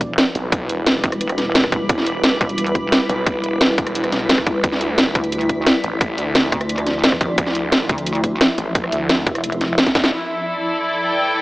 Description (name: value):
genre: dark technical drum and bass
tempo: 175 BPM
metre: 4/4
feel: straight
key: E phrygian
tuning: A4 = 440 Hz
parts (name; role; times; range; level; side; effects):
- swarming drone; sustained chords; 0.0-11.4 s; F3 to E5; -23 LUFS; equal; built-in reverb, sidechain pumping
- pulsing pluck wobble bass; bass; 0.0-2.9, 5.2-9.8 s; E1 to D2; -23 LUFS; equal; chorus
- drum and bass drum kit; drums; 0.0-10.1 s; hi-hat, rim click, snare drum; -18 LUFS; equal; overdrive, low-pass filter on hats, low-pass filter on snare
- electronic kick drum; drums; 0.0-10.0 s; none; -19 LUFS; equal; overdrive
- snarling distorted saw bass; bass; 0.4-10.1 s; E1 to D2; -25 LUFS; equal; none
- rich studio string section; texture; 10.1-11.4 s; E4 to G5; -19 LUFS; equal; sidechain pumping
room: moderate lush hall reverb, RT60 2.1 s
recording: AM radio sound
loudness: -16 LUFS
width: side -20 dB against mid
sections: 0.0-10.1 A section; 10.1-11.4 B section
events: drum fill 9.9; band accent 10.0; filter sweep on synth drone 10.1-11.4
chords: 0.0 Em; 4.6 Dmadd9; 10.1 Em